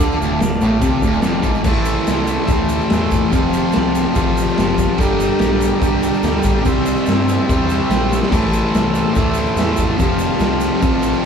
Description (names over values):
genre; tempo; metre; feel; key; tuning
garage rock duo or trio; 144 BPM; 4/4; straight; unclear; A4 = 440 Hz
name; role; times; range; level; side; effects
combo organ; sustained chords; 0.0-11.3 s; E4 to F5; -25 LUFS; left 1 dB; none
fuzz guitar; riff; 0.0-11.3 s; D2 to C4; -17 LUFS; equal; distortion
growling picked electric bass; bass; 0.0-11.1 s; D1 to G2; -24 LUFS; equal; overdrive
egg shaker; percussion; 0.0-11.2 s; none; -39 LUFS; right 6 dB; none
raw garage drum kit; drums; 0.4-11.1 s; crash cymbal, kick drum, ride cymbal, snare drum, splash cymbal; -19 LUFS; equal; none
room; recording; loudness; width
moderate large studio reverb, RT60 1.1 s; band playing live in one room; -14 LUFS; side -6 dB against mid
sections
0.0-1.7 A section; 1.7-11.3 B section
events
drum fill 8.1; transistor combo organ fill 11.0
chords
0.0 Dm; 1.7 Am; 3.3 F; 5.0 Gm; 6.7 C; 8.3 Am; 10.0 F